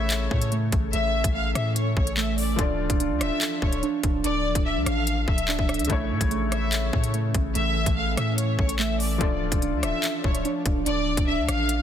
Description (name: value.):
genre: hip hop, drill.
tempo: 145 BPM.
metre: 4/4.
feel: half-time.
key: D harmonic minor.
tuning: A4 = 440 Hz.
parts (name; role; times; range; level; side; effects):
warm studio violin section; second line; 0.0-11.8 s; C#5 to F5; -30 LUFS; left 2 dB; digital delay.
felt-muted upright piano; accompaniment; 0.0-11.8 s; C#3 to D5; -34 LUFS; left 6 dB; low-pass filter.
ethereal airy pad; sustained chords; 0.1-11.8 s; E3 to D5; -34 LUFS; equal; ensemble chorus, built-in reverb.
muted felt-like synth keys; arpeggios; 0.0-11.8 s; A3 to D4; -30 LUFS; right 7 dB; chorus, low-pass filter, digital delay.
long sustained 808-style bass; bass; 0.0-11.8 s; D1 to A2; -28 LUFS; equal; none.
drill drum kit; drums; 0.1-11.8 s; handclaps, hi-hat, kick drum, rim click; -26 LUFS; equal; none.
room: light reverb.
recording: dense, heavily limited modern master.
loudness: -22 LUFS.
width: side -9 dB against mid.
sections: 0.0-11.8 A section.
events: none.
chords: 0.0 A; 2.6 Dmadd9; 5.9 A; 9.2 Dmadd9.